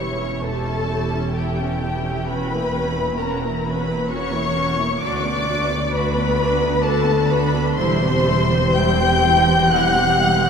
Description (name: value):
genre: classical, slow romantic movement for string orchestra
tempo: 65 BPM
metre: 3/4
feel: rubato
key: B minor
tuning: A4 = 437 Hz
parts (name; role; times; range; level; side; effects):
- warm symphonic violin section; melody; 0.0-10.5 s; G5 to G6; -25 LUFS; left 3 dB; none
- rich chamber violin section; second line; 0.0-10.5 s; G4 to G5; -21 LUFS; left 2 dB; none
- rich chamber viola section; accompaniment; 0.0-10.5 s; G3 to G4; -26 LUFS; right 1 dB; none
- clear studio cello section; bass; 0.0-10.5 s; D2 to E2; -24 LUFS; right 2 dB; none
- warm chamber double bass section; bass; 0.0-10.5 s; E1 to D2; -25 LUFS; right 2 dB; none
room: wet cathedral reverb, RT60 6.6 s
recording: none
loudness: -17 LUFS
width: side -6 dB against mid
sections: 0.0-10.5 A section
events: none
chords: 0.0 C#dim/E; 2.3 F#7/E; 5.0 Bm/D; 7.8 C/E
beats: 0.45 1.37 | 2.29 3.20 4.11 | 5.03 5.94 6.86 | 7.79 8.76 9.71